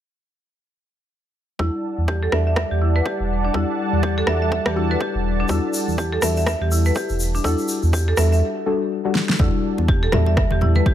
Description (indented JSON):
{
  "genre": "afro house",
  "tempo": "123 BPM",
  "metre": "4/4",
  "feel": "swing 58% on 16ths",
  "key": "E minor",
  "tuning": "A4 = 440 Hz",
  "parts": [
    { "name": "warm analog pad", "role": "sustained chords", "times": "1.6-10.9 s", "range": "G3 to A5", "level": "-27 LUFS", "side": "equal", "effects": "chorus, sidechain pumping" },
    { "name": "marimba with hard mallets", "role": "arpeggios", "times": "1.6-10.9 s", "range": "D4 to E5", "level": "-25 LUFS", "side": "right 1 dB", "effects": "sidechain pumping, low-pass filter, dub echo" },
    { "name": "deep mellow chord stab", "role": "stabs", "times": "1.6-10.9 s", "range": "G3 to A4", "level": "-26 LUFS", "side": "left 5 dB", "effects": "chorus, sidechain pumping, dub echo" },
    { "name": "smooth gliding synth bass", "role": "bass", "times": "1.6-10.8 s", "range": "E1 to E2", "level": "-20 LUFS", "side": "equal", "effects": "sidechain pumping" },
    { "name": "electronic kick drum", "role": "drums", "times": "1.6-10.9 s", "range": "none", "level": "-22 LUFS", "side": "equal", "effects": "overdrive, high-pass filter on kick, small room reverb" },
    { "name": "electronic rim click and snare drum", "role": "drums", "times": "2.3-10.5 s", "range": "none", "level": "-24 LUFS", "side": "equal", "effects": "overdrive, small room reverb" },
    { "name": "egg shaker", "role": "percussion", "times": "5.5-8.4 s", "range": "none", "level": "-30 LUFS", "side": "left 2 dB", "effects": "none" },
    { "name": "congas", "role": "percussion", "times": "9.4-10.9 s", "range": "none", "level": "-25 LUFS", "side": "left 1 dB", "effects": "none" }
  ],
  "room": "studio ambience",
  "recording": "none",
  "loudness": "-18 LUFS",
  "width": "side -11 dB against mid",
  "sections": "1.6-9.4 A section; 9.4-10.9 B section",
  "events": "filter sweep on analog synth bass 1.6-9.4; filter sweep on synth stab 1.6-9.4; break 8.4-9.4; drum fill 9.2",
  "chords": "1.6 Em11",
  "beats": "| 1.59 2.08 2.57 3.05 | 3.54 4.03 4.52 5.00 | 5.49 5.98 6.47 6.96 | 7.44 7.93 8.42 8.91 | 9.40 9.88 10.37 10.86"
}